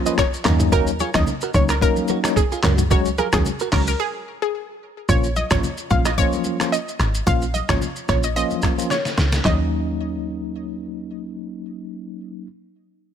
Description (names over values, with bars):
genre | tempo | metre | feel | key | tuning
afrobeats | 110 BPM | 4/4 | swing 55% on 16ths | Eb minor | A4 = 441 Hz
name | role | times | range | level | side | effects
analog pluck | melody | 0.0-11.0 s | Ab4 to F5 | -25 LUFS | equal | chorus, ping-pong delay
tine electric piano | accompaniment | 0.1-12.5 s | F3 to Gb4 | -25 LUFS | left 1 dB | medium stereo tremolo
direct-recorded clean electric guitar | riff | 0.1-3.8 s | F4 to Eb5 | -28 LUFS | right 7 dB | wide subtle chorus
lo-fi sampler-style drum kit | drums | 0.1-9.6 s | finger snaps, handclaps, hi-hat, kick drum, rim click, shaker, snare drum, toms | -22 LUFS | equal | none
congas | percussion | 0.1-9.7 s | none | -32 LUFS | left 2 dB | none
woody log drum bass | bass | 0.5-12.5 s | Ab1 to Eb2 | -22 LUFS | equal | none
room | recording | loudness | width
little or no reverb | none | -18 LUFS | side -8 dB against mid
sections
0.0-5.1 A section; 5.1-9.4 B section; 9.4-13.1 C section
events
break 4.0-5.1; drum fill 8.9-9.4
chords
0.5 Dbsus4; 5.1 Bbm; 9.4 Ebm7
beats
0.18 | 0.72 1.27 1.81 2.36 | 2.90 3.45 4.00 4.54 | 5.09 5.63 6.18 6.72 | 7.27 7.81 8.36 8.90 | 9.45 10.00 10.54 11.09 | 11.63 12.18